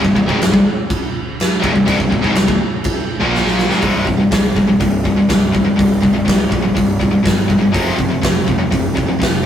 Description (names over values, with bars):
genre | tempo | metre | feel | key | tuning
heavy metal | 123 BPM | 4/4 | straight | unclear | A4 = 445 Hz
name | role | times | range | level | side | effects
high-gain distorted guitar | riff | 0.0-3.8 s | C2 to Bb3 | -22 LUFS | right 1 dB | distortion
tight distorted guitar | riff | 0.0-9.4 s | C2 to Bb3 | -17 LUFS | left 4 dB | distortion
tight distorted guitar | riff | 0.0-9.5 s | C2 to Bb3 | -19 LUFS | right 3 dB | distortion
fuzz picked electric bass | bass | 0.0-9.5 s | C1 to Bb1 | -22 LUFS | equal | overdrive
big rock drum kit | drums | 0.0-9.3 s | crash cymbal, hi-hat, kick drum, snare drum | -17 LUFS | right 1 dB | none
room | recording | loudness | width
light reverb | rough rehearsal-room recording, warm saturation | -12 LUFS | side -9 dB against mid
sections
0.0-3.8 A section; 3.8-9.5 B section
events
drum fill 3.3-3.8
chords
0.0 C5; 3.2 Bb5; 3.7 Ab5; 3.8 C5; 7.7 F5